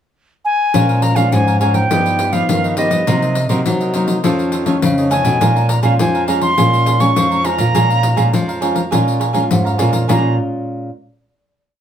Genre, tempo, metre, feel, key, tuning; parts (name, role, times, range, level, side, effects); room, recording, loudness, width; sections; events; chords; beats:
samba and choro; 103 BPM; 4/4; straight; Bb minor; A4 = 441 Hz
silver concert flute; melody; 0.4-10.4 s; D#5 to Db6; -17 LUFS; equal
cavaquinho; accompaniment; 0.7-10.3 s; F4 to Bb5; -22 LUFS; right 5 dB
nylon-string guitar; accompaniment; 0.7-10.9 s; F2 to F4; -20 LUFS; left 2 dB
nylon-string guitar; bass; 0.7-10.4 s; G2 to G3; -17 LUFS; right 1 dB
pandeiro; percussion; 0.7-10.2 s; -20 LUFS; left 4 dB
wet studio reverb, RT60 0.5 s; heard from further back in the room; -13 LUFS; side -9 dB against mid
0.0-0.7 pickup bar; 0.7-10.1 A section; 10.1-11.8 final chord
0.0 N.C.; 0.7 Bbm7; 1.9 Gaug7; 3.1 Cm7b5; 4.2 Faug7; 5.4 Bbm7
0.16 | 0.74 1.32 1.91 2.49 | 3.07 3.66 4.24 4.83 | 5.41 6.00 6.58 7.17 | 7.75 8.34 8.92 9.51 | 10.09 10.68